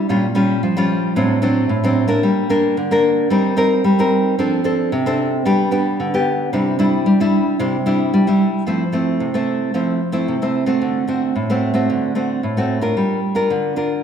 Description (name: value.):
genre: samba.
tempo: 112 BPM.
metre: 4/4.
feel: straight.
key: F major.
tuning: A4 = 440 Hz.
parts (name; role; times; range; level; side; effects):
nylon-string guitar; solo; 0.0-14.0 s; A2 to Bb4; -15 LUFS; equal; none.
room: wet recital hall reverb, RT60 1.4 s.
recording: recorded in a church or concert hall.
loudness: -15 LUFS.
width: side -8 dB against mid.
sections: 0.0-8.7 A section; 8.7-14.0 B section.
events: none.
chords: 0.1 Bbm6; 1.2 D7/A; 2.2 Gm; 3.3 Cm7/G; 4.4 F6; 5.5 G; 6.5 Cadd9; 8.7 Fmaj7; 10.8 D7; 13.0 Gm7.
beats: | 0.10 0.63 1.17 1.70 | 2.24 2.77 3.31 3.85 | 4.38 4.92 5.45 5.99 | 6.52 7.06 7.60 8.13 | 8.67 9.21 9.74 10.28 | 10.82 11.36 11.89 12.43 | 12.97 13.51.